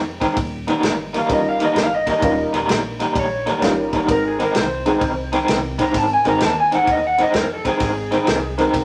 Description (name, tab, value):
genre	electric blues shuffle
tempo	129 BPM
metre	4/4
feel	swing 67% on 8ths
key	unclear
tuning	A4 = 438 Hz
part	upright bass	bass	0.0-8.8 s	Eb1 to F2	-33 LUFS	equal	none
part	electric guitar through a small old amp	riff	0.2-8.8 s	Eb3 to Eb4	-23 LUFS	equal	tremolo
part	natural country drum kit	drums	0.2-8.8 s	kick drum, ride cymbal, snare drum	-26 LUFS	equal	none
part	electric slide guitar	melody	1.2-8.7 s	Ab4 to Bb5	-23 LUFS	equal	none
part	honky-tonk upright piano	accompaniment	1.3-8.7 s	G3 to Bb4	-23 LUFS	equal	none
room	wet small room reverb, RT60 0.5 s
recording	none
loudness	-19 LUFS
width	mono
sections	0.0-8.8 A section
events	electric slide guitar solo 0.0-8.8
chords	0.4 Eb7; 4.1 Ab7